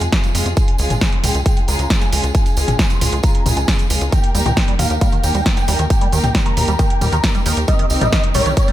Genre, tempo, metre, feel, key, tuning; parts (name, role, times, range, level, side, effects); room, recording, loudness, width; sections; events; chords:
uplifting trance; 135 BPM; 4/4; straight; A4 = 441 Hz
big supersaw lead; melody; 0.0-8.7 s; Db5 to C6; -24 LUFS; equal; sidechain pumping, low-pass filter, tape echo
warm studio string section; sustained chords; 0.0-8.7 s; C3 to Bb4; -24 LUFS; equal; sidechain pumping
tight sequencer bass; bass; 0.0-8.5 s; Ab1 to F2; -19 LUFS; equal; sidechain pumping
punchy analog drum machine; drums; 0.0-8.7 s; hi-hat, snare drum, toms; -21 LUFS; equal; sidechain pumping on hats, sidechain pumping on cymbals, sidechain pumping on toms
tambourine; percussion; 0.0-8.7 s; -28 LUFS; right 5 dB
electronic kick drum; drums; 0.1-8.7 s; -16 LUFS; equal
liquid acid bass; arpeggios; 4.1-8.7 s; Eb3 to G3; -25 LUFS; right 4 dB; chorus, sidechain pumping, tape echo
digital ambience; -14 LUFS; side -13 dB against mid
0.0-8.7 A section
0.0 Fm; 0.6 Db; 4.1 Eb; 7.7 Cm7